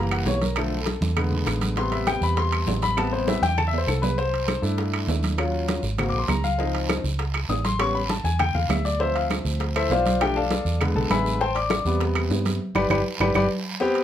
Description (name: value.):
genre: Afro-Cuban jazz.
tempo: 199 BPM.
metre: 4/4.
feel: straight.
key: A minor, C major from 4.2 s.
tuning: A4 = 440 Hz.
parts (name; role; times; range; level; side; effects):
clear baby grand piano; accompaniment; 0.0-14.0 s; C3 to Eb6; -24 LUFS; left 3 dB; none.
vintage muted fingered electric bass; bass; 0.0-13.5 s; F#1 to G2; -26 LUFS; right 1 dB; none.
bongos; percussion; 0.1-14.0 s; none; -33 LUFS; left 5 dB; none.
claves; percussion; 0.1-13.4 s; none; -32 LUFS; right 3 dB; none.
congas; percussion; 0.1-14.0 s; none; -31 LUFS; right 1 dB; none.
timbales; percussion; 0.1-14.0 s; none; -32 LUFS; right 7 dB; none.
guiro; percussion; 0.3-14.0 s; none; -36 LUFS; right 6 dB; none.
room: moderate studio ambience, RT60 0.5 s.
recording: none.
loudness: -21 LUFS.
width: side -10 dB against mid.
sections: 0.0-4.2 A section; 4.2-13.8 A section.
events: grand piano solo 0.0-13.8; drum fill 3.3-4.2, 13.2-13.8; band accent 12.6-13.8.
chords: 0.0 F#7b9; 0.6 Bm7b5; 1.2 E7; 1.8 Am9; 4.2 C69; 5.4 Ebm7; 6.0 Ab7; 6.6 Dbmaj7; 7.8 A7; 9.0 Dm9; 10.2 Bm7b5; 10.8 E7; 11.4 Am7; 12.6 G.